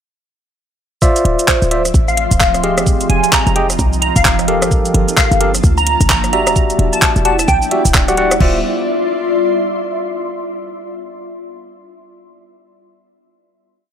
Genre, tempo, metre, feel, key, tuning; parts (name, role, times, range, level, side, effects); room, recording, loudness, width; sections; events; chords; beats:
UK garage, two-step garage; 130 BPM; 4/4; swing 61% on 16ths; A4 = 439 Hz
ethereal airy pad; sustained chords; 1.6-8.6 s; G3 to G5; -26 LUFS; left 1 dB; ensemble chorus, built-in reverb, sidechain pumping
tine electric piano; stabs; 1.0-8.6 s; F4 to G5; -18 LUFS; equal; tape echo
electronic kick drum; drums; 1.0-8.5 s; -15 LUFS; equal
garage drum kit; drums; 1.0-8.5 s; crash cymbal, handclaps, hi-hat, rim click, shaker; -17 LUFS; right 1 dB
ethereal airy pad; texture; 1.8-10.2 s; F3 to C6; -21 LUFS; left 1 dB; ensemble chorus, built-in reverb, sidechain pumping
short 808-style bass; bass; 1.2-8.6 s; D1 to D2; -17 LUFS; equal
glassy wavetable pluck; melody; 1.5-8.1 s; C5 to Bb5; -18 LUFS; equal; chorus, vintage 12-bit sampler grit, tape echo
light reverb, digital ambience; -11 LUFS; side -8 dB against mid
1.0-8.4 drop; 8.4-10.3 final chord
drop 1.0-8.4
1.0 Dm9; 2.6 Fm9; 4.5 Gm9; 6.6 Em9; 8.4 Dm9
| 1.02 1.48 1.94 2.40 | 2.87 3.33 3.79 4.25 | 4.71 5.17 5.64 6.10 | 6.56 7.02 7.48 7.94 | 8.40 8.87 9.33 9.79